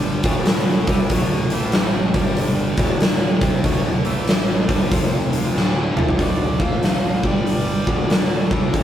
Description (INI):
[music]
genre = blues rock power trio and southern rock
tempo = 94 BPM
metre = 4/4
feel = swing 64% on 8ths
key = unclear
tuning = A4 = 441 Hz
[part]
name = overdriven tonewheel organ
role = sustained chords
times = 0.0-8.8 s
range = E3 to F#5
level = -36 LUFS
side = right 2 dB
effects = none
[part]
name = biting overdriven guitar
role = riff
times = 0.0-8.8 s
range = D2 to C4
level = -25 LUFS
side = equal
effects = none
[part]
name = fuzz fingered electric bass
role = bass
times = 0.0-8.8 s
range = D1 to C2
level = -24 LUFS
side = equal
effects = overdrive
[part]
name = huge arena drum kit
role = drums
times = 0.2-8.8 s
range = hi-hat, kick drum, snare drum, toms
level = -18 LUFS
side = equal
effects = none
[part]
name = overdriven harmonica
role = melody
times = 6.2-8.5 s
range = G4 to F5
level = -28 LUFS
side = equal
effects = none
[sound]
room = light reverb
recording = rough rehearsal-room recording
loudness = -16 LUFS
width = side -10 dB against mid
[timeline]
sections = 0.0-6.2 A section; 6.2-8.8 B section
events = drum fill 5.6-6.2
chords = 0.2 D; 1.4 A5; 2.1 G5; 2.7 D; 4.0 A5; 4.6 D; 4.9 F5; 5.6 D; 6.5 A5; 7.1 G5; 7.8 D